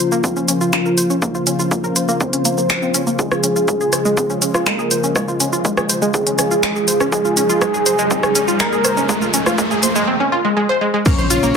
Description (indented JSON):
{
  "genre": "melodic techno",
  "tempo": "122 BPM",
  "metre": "4/4",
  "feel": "straight",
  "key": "unclear",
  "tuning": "A4 = 440 Hz",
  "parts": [
    { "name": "wide unison lead", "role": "melody", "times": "0.0-11.6 s", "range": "Db4 to C5", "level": "-20 LUFS", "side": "equal", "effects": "sidechain pumping, ping-pong delay" },
    { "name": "sweeping resonant pad", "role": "sustained chords", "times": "0.0-11.6 s", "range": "Db3 to C5", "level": "-24 LUFS", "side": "left 1 dB", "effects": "chorus, sidechain pumping" },
    { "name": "wide unison pluck", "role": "arpeggios", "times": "0.0-11.5 s", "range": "Ab3 to C6", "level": "-20 LUFS", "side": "equal", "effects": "sidechain pumping, ping-pong delay" },
    { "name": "swelling detuned saw bass", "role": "bass", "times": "0.0-11.5 s", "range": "Ab1 to Bb2", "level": "-34 LUFS", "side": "equal", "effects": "none" },
    { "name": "techno drum kit", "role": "drums", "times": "0.1-11.5 s", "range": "crash cymbal, finger snaps, hi-hat, rim click, shaker", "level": "-20 LUFS", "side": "equal", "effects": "overdrive, sidechain pumping on perc, high-pass filter on perc, sidechain pumping on hats, high-pass filter on hats, soft clipping on snare, high-pass filter on snare, sidechain pumping on cymbals, high-pass filter on cymbals" },
    { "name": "electronic kick drum", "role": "drums", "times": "0.2-11.2 s", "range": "none", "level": "-22 LUFS", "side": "equal", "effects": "overdrive, high-pass filter on kick" },
    { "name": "riser and impact", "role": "sound effects", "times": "5.7-11.6 s", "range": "none", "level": "-24 LUFS", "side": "right 2 dB", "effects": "none" },
    { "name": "airy dreamy lead", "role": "second line", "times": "11.1-11.6 s", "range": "Db5", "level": "-23 LUFS", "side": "left 7 dB", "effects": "chorus, cassette tape, sidechain pumping" },
    { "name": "ride cymbal", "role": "drums", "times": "11.1-11.4 s", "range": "none", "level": "-32 LUFS", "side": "right 2 dB", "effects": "none" }
  ],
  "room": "moderate digital room reverb, RT60 1.2 s",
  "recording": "dense, heavily limited modern master",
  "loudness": "-14 LUFS",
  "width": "side -6 dB against mid",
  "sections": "0.0-11.1 A section",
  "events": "build-up 0.0-11.1; filter sweep on synth pluck 0.0-11.1; filter sweep on analog synth lead 0.0-11.1; riser 5.7-10.1; impact 11.1-11.6",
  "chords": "0.0 Bbmadd9; 3.2 Dbmaj7; 11.1 Bbmadd9"
}